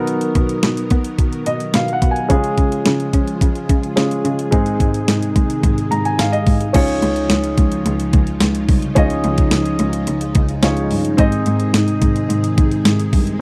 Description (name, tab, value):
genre	1980s-style pop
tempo	108 BPM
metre	4/4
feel	straight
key	Db major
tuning	A4 = 438 Hz
part	warm baby grand piano	accompaniment	0.0-13.4 s	Ab3 to Bb5	-23 LUFS	equal	none
part	string machine, violas	sustained chords	0.0-13.4 s	C3 to Bb4	-26 LUFS	equal	ensemble chorus
part	rich cello	bass	0.0-13.3 s	C2 to Db4	-23 LUFS	equal	none
part	clean 12-bit digital drum machine	drums	0.1-13.4 s	crash cymbal, hi-hat, kick drum, snare drum, tambourine	-19 LUFS	equal	none
room	little or no reverb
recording	dry, close 1970s-style studio recording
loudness	-17 LUFS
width	mono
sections	0.0-6.7 A section; 6.7-13.4 B section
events	grand piano fill 1.2-2.3, 5.6-6.7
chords	0.0 Cbmaj7; 2.3 Db; 4.5 Ab; 6.7 Dbadd9; 11.2 Ab